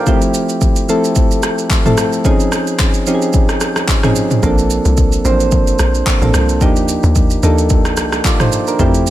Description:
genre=amapiano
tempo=110 BPM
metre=4/4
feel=swing 55% on 16ths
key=unclear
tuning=A4 = 440 Hz
part: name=soft electric-piano-like synth keys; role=accompaniment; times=0.0-9.1 s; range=F3 to G5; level=-15 LUFS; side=right 1 dB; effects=chorus
part: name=deep house drum kit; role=drums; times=0.1-9.1 s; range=handclaps, kick drum, rim click, shaker, toms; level=-14 LUFS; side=equal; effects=none
part: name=tight log drum bass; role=bass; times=4.4-9.1 s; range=A1 to F2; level=-15 LUFS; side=equal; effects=none
room=little or no reverb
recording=none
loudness=-11 LUFS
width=side -14 dB against mid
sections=0.0-9.1 A section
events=none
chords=0.1 Fmaj9; 2.2 Dbmaj9; 4.4 Bbmaj9; 6.6 Ebmaj9

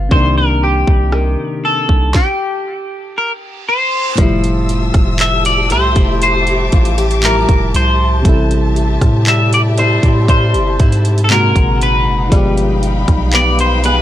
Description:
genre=contemporary R&B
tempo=59 BPM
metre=4/4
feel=straight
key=F major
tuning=A4 = 440 Hz
part: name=FM electric piano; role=accompaniment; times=0.0-14.0 s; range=A2 to A4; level=-19 LUFS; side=left 1 dB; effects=chorus
part: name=picked acoustic archtop guitar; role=arpeggios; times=0.0-14.0 s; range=C3 to Ab4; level=-23 LUFS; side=left 2 dB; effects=none
part: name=long sustained 808-style bass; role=bass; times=0.0-14.0 s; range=F1 to A2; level=-15 LUFS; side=equal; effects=none
part: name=clean electric guitar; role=melody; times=0.1-14.0 s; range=G4 to E5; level=-16 LUFS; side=left 1 dB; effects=wide subtle chorus, tape echo
part: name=trap drum kit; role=drums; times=0.1-14.0 s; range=handclaps, hi-hat, kick drum, rim click, snare drum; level=-13 LUFS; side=equal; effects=none
part: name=reverse cymbal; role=sound effects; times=3.4-4.2 s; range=none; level=-26 LUFS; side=right 8 dB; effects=none
part: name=warm studio string section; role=sustained chords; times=4.2-14.0 s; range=Eb4 to E6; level=-23 LUFS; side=left 2 dB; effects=none
room=little or no reverb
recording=dry, gritty hardware recording, cassette tape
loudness=-11 LUFS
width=side -12 dB against mid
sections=0.0-4.2 A section; 4.2-14.0 B section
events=stop 2.1-4.2; reverse cymbal 3.4-4.2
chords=0.1 Cm9; 4.2 Fmaj9; 8.2 Am7; 11.3 Ab9; 12.3 G7b9

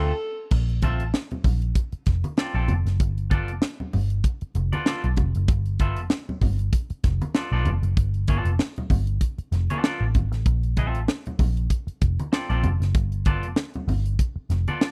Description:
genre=funk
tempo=96 BPM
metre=4/4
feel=swing 56% on 16ths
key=unclear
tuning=A4 = 440 Hz
part: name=breathy alto saxophone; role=melody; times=0.0-0.5 s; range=A4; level=-33 LUFS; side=equal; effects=none
part: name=clean electric guitar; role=accompaniment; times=0.0-14.9 s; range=B3 to E5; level=-33 LUFS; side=equal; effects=none
part: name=vintage muted picked electric bass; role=bass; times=0.0-14.7 s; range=F1 to D2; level=-26 LUFS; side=equal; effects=none
part: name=crisp fusion drum kit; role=drums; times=0.5-14.9 s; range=crash cymbal, hi-hat, kick drum, snare drum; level=-25 LUFS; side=equal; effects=none
part: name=congas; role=percussion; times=0.5-14.9 s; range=none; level=-34 LUFS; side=equal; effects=none
room=studio reverb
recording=dry, close 1970s-style studio recording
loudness=-24 LUFS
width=mono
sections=0.5-14.9 A section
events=band accent 0.0-0.5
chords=0.0 Dm9; 0.5 Bbmaj9; 3.0 G9; 10.5 Bbmaj9; 13.0 G9

